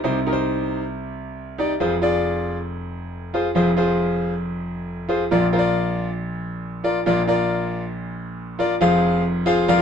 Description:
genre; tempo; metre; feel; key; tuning
soul; 137 BPM; 4/4; straight; F dorian; A4 = 440 Hz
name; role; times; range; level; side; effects
clear concert grand piano; solo; 0.0-9.8 s; F1 to F5; -19 LUFS; equal; none
room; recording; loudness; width
moderate studio reverb, RT60 0.8 s; band playing live in one room; -19 LUFS; side -7 dB against mid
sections
0.0-8.8 A section; 8.8-9.8 B section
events
none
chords
0.0 Cm; 1.8 Fm; 5.3 Bb; 8.8 Fm

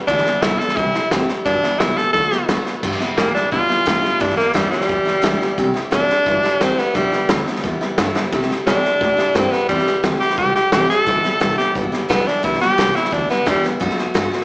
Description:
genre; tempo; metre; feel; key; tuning
rockabilly; 175 BPM; 4/4; straight; G major; A4 = 435 Hz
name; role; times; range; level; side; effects
picked steel-string acoustic guitar; accompaniment; 0.0-14.4 s; G2 to G4; -22 LUFS; equal; slapback echo
edgy tenor saxophone; melody; 0.1-13.6 s; G3 to A4; -18 LUFS; equal; tape echo
upright bass; bass; 0.1-14.4 s; F1 to C3; -26 LUFS; equal; none
vintage drum kit; drums; 0.1-14.4 s; crash cymbal, hi-hat, kick drum, snare drum; -22 LUFS; equal; none
room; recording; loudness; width
light reverb, small room ambience; live gig heard through the venue's PA, club reverb, small speaker sound; -15 LUFS; side -27 dB against mid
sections
0.0-2.8 A section; 2.8-14.4 A section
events
drum fill 8.1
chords
0.1 G6; 0.8 C6; 1.5 G6; 2.1 D6; 2.8 G6; 5.6 C6; 6.9 G6; 8.3 C6; 11.1 G6; 13.8 D6

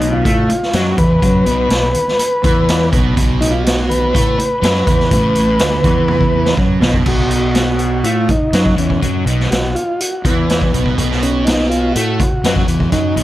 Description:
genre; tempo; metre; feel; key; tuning
psychedelic rock; 123 BPM; 4/4; straight; unclear; A4 = 440 Hz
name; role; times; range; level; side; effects
combo organ; melody; 0.0-13.2 s; B3 to B4; -18 LUFS; equal; none
fuzz guitar; riff; 0.0-13.2 s; A2 to A3; -18 LUFS; right 1 dB; distortion, phaser
fuzz fingered electric bass; bass; 0.0-13.2 s; A1 to A2; -18 LUFS; equal; overdrive
raw garage drum kit; drums; 0.0-13.2 s; crash cymbal, hi-hat, kick drum, snare drum, toms; -17 LUFS; equal; none
congas; percussion; 0.1-6.9 s; none; -30 LUFS; left 2 dB; none
room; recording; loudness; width
light reverb, studio ambience; none; -12 LUFS; side -15 dB against mid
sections
0.0-7.1 A section; 7.1-13.2 B section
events
drum fill 6.1-7.1; transistor combo organ solo 7.1-13.2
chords
0.0 B5

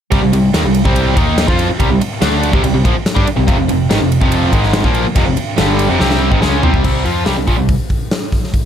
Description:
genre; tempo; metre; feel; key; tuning
hard rock; 143 BPM; 4/4; straight; C minor; A4 = 441 Hz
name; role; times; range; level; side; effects
distorted electric guitar; riff; 0.1-7.7 s; F2 to F4; -19 LUFS; left 10 dB; overdrive
distorted electric guitar; riff; 0.1-6.8 s; F2 to F4; -19 LUFS; equal; distortion
overdriven electric guitar; riff; 0.1-7.8 s; F2 to F4; -19 LUFS; right 11 dB; none
picked electric bass; bass; 0.1-7.8 s; F1 to G2; -18 LUFS; equal; none
big rock drum kit; drums; 0.1-8.6 s; crash cymbal, hi-hat, kick drum, ride cymbal, snare drum, toms; -16 LUFS; equal; none
room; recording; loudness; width
light reverb; none; -11 LUFS; side -9 dB against mid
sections
0.1-6.8 A section; 6.8-8.7 B section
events
drum fill 6.0-6.8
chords
0.1 Cm; 3.5 F5; 6.8 C5

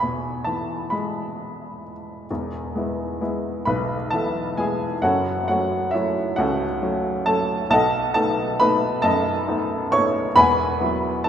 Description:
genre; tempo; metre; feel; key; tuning
classical, lyrical solo piano; 45 BPM (dotted quarters); 6/8; rubato; E major; A4 = 440 Hz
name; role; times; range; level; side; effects
warm upright piano; solo; 0.0-11.3 s; E1 to C#6; -20 LUFS; equal; none
room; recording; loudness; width
wet cathedral reverb, RT60 4.3 s; recorded in a church or concert hall; -20 LUFS; side -9 dB against mid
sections
0.0-2.3 A section; 2.3-11.3 A section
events
none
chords
0.0 E; 5.0 F#m; 7.7 B7; 10.4 Eadd9

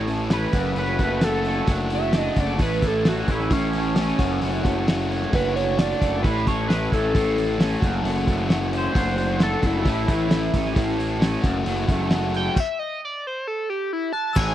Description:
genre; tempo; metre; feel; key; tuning
indie rock; 132 BPM; 4/4; straight; A major; A4 = 437 Hz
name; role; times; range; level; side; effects
crunchy overdriven guitar; riff; 0.0-14.5 s; E3 to F#4; -28 LUFS; left 6 dB; none
raw garage guitar; riff; 0.0-14.5 s; F#2 to E4; -29 LUFS; right 6 dB; overdrive, lush chorus
fuzz picked electric bass; bass; 0.0-14.5 s; F#1 to A1; -26 LUFS; equal; overdrive
cloth-damped thuddy drum kit; drums; 0.1-14.5 s; crash cymbal, hi-hat, kick drum, snare drum; -22 LUFS; equal; none
overdriven synth lead; melody; 0.3-14.5 s; C#4 to A5; -26 LUFS; right 1 dB; phaser, tape echo
glockenspiel with brass mallets; second line; 14.1-14.5 s; E6 to F#6; -30 LUFS; left 6 dB; none
egg shaker; percussion; 14.3-14.5 s; none; -46 LUFS; right 10 dB; none
room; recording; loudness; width
little or no reverb; dry, close 1970s-style studio recording; -20 LUFS; side -12 dB against mid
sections
0.0-14.4 A section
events
analog synth lead solo 0.0-14.4; stop 12.6-14.4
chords
0.0 A; 0.5 F#m; 1.7 D/F#; 2.6 A; 4.2 F#m; 5.3 D/F#; 6.2 A; 7.8 F#m; 9.0 D/F#; 9.9 A; 11.4 F#m; 12.6 N.C.

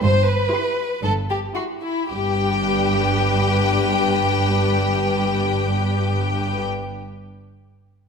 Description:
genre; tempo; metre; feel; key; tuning
quick classical-period movement for symphony orchestra; 110 BPM; 4/4; straight; G major; A4 = 440 Hz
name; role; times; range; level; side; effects
rich chamber violin section; second line; 0.0-6.6 s; E4 to C5; -23 LUFS; left 3 dB; none
warm studio cello section; bass; 0.0-6.6 s; G2; -23 LUFS; right 1 dB; none
warm studio double bass section; bass; 0.0-6.6 s; G1; -27 LUFS; right 4 dB; none
clear chamber violin section; melody; 0.5-6.6 s; G5 to C6; -26 LUFS; left 5 dB; none
rich chamber viola section; accompaniment; 0.5-6.6 s; D4 to B4; -27 LUFS; left 2 dB; none
room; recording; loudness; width
wet scoring stage reverb, RT60 1.7 s; minimal, uncompressed stereo recording; -18 LUFS; side -6 dB against mid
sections
0.0-2.1 A section; 2.1-6.5 B section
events
slowing down 0.0-2.1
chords
0.0 C/G; 2.1 G

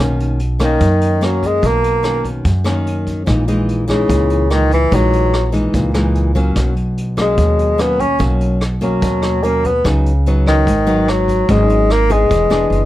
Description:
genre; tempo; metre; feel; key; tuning
bossa nova; 146 BPM; 4/4; straight; unclear; A4 = 440 Hz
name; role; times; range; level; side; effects
nylon-string guitar; accompaniment; 0.0-12.9 s; F#2 to G#4; -19 LUFS; left 1 dB; none
upright bass; bass; 0.0-12.9 s; E1 to F#2; -17 LUFS; equal; none
vintage brush drum kit; drums; 0.2-12.8 s; hi-hat, kick drum, rim click; -23 LUFS; equal; none
warm bassoon; melody; 0.6-12.9 s; C#3 to C#4; -15 LUFS; left 1 dB; none
room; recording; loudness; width
little or no reverb; close, detailed microphones; -12 LUFS; side -15 dB against mid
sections
0.0-12.9 A section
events
none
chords
0.0 Bmaj9; 3.3 F#13/A# (rootless); 6.6 G#m11/B (rootless); 9.8 C#9sus4; 11.5 G#m7; 12.3 E7

